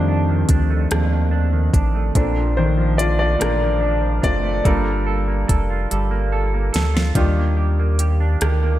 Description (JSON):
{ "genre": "slow six-eight R&B", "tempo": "48 BPM (dotted quarters)", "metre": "6/8", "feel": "straight", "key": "G minor", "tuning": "A4 = 440 Hz", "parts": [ { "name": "semi-hollow electric guitar", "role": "second line", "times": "0.0-8.8 s", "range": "F2 to A4", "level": "-24 LUFS", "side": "right 5 dB", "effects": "lush chorus, slapback echo" }, { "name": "clear grand piano", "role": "accompaniment", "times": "0.0-8.8 s", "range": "Eb3 to D5", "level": "-23 LUFS", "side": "left 3 dB", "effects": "none" }, { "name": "rubbery square bass", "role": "bass", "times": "0.0-8.8 s", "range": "F1 to F2", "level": "-19 LUFS", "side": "equal", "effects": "none" }, { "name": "smooth R&B drum kit", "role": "drums", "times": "0.5-8.6 s", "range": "hi-hat, kick drum, rim click, snare drum", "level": "-21 LUFS", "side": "equal", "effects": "none" } ], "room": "light reverb", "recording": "none", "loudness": "-16 LUFS", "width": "side -14 dB against mid", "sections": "0.0-8.8 A section", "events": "grand piano solo 0.0-8.8; drum fill 5.9-7.2", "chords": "0.0 F13; 2.2 Bbmaj7; 4.7 Gm9; 7.2 Ebmaj7" }